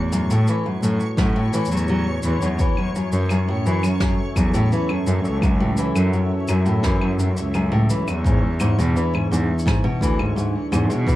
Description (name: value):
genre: folktronica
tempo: 85 BPM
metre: 4/4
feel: straight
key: unclear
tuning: A4 = 441 Hz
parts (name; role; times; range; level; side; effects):
- warm analog pad; sustained chords; 0.0-11.2 s; A2 to E5; -29 LUFS; right 1 dB; chorus, plate reverb
- rich cello; bass; 0.0-11.2 s; C#2 to B2; -22 LUFS; equal; none
- backwards swelling texture; texture; 0.0-11.2 s; C#5 to C#6; -35 LUFS; left 1 dB; built-in reverb
- fingerpicked steel-string acoustic guitar; arpeggios; 0.1-11.2 s; F#2 to F#3; -22 LUFS; left 1 dB; digital delay, plate reverb
- shaker, snare drum and claves; drums; 0.1-11.2 s; none; -31 LUFS; equal; none
- electronic kick drum; drums; 1.2-11.2 s; none; -22 LUFS; equal; none
room: light reverb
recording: dark, warm production, vinyl crackle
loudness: -18 LUFS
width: side -15 dB against mid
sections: 0.0-11.2 A section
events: none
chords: 0.0 A6; 2.6 F#m7; 8.2 E7